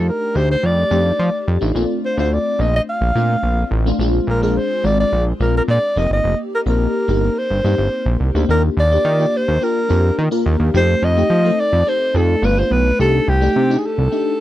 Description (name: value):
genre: polished 1980s jazz-funk pop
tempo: 107 BPM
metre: 4/4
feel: straight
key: unclear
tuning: A4 = 440 Hz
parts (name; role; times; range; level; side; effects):
- breathy alto saxophone; melody; 0.0-14.4 s; G4 to F5; -19 LUFS; equal; none
- FM electric piano with soft pad layer; accompaniment; 0.0-14.4 s; Ab3 to Bb4; -21 LUFS; left 2 dB; phaser, ensemble chorus
- fat analog bass; bass; 0.0-14.1 s; F1 to F3; -17 LUFS; equal; none
room: little or no reverb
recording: dry, close 1970s-style studio recording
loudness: -14 LUFS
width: side -14 dB against mid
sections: 0.0-8.5 A section; 8.5-14.4 B section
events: none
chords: 0.0 F13; 1.8 Bbmaj7; 4.0 Bb7; 6.0 F9sus4; 8.5 Ebmaj9; 10.7 F7; 12.4 G7; 13.0 Cm69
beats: 0.07 0.63 1.19 | 1.75 2.32 2.88 3.44 | 4.00 4.56 5.12 5.68 | 6.25 6.81 7.37 7.93 | 8.49 9.06 9.62 10.18 | 10.74 11.31 11.87 12.43 | 13.00 13.56 14.12